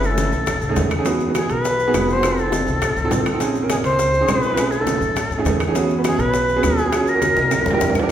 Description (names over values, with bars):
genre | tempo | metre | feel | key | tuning
Afro-Cuban jazz | 205 BPM | 4/4 | straight | unclear | A4 = 440 Hz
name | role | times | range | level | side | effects
bright reedy shakuhachi | melody | 0.0-8.0 s | G#4 to C5 | -21 LUFS | left 1 dB | none
warm grand piano | accompaniment | 0.0-8.1 s | A3 to C5 | -21 LUFS | right 3 dB | none
upright bass | bass | 0.0-8.1 s | F1 to Gb2 | -25 LUFS | equal | none
bongos | percussion | 0.0-8.0 s | none | -29 LUFS | left 5 dB | none
congas | percussion | 0.0-8.0 s | none | -29 LUFS | left 2 dB | none
maracas | percussion | 0.0-8.1 s | none | -35 LUFS | left 6 dB | none
timbales | percussion | 0.2-8.1 s | none | -28 LUFS | right 4 dB | none
claves | percussion | 0.5-8.1 s | none | -36 LUFS | left 5 dB | none
room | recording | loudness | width
wet recital hall reverb, RT60 1.5 s | recorded in a church or concert hall | -16 LUFS | side -10 dB against mid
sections
0.0-8.1 A section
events
drum fill 7.2-8.1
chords
0.5 Cb13; 1.1 Emaj9; 2.2 F7; 3.4 Bbm11; 4.6 Cb13; 5.8 E6; 6.9 Ebm11; 7.5 C9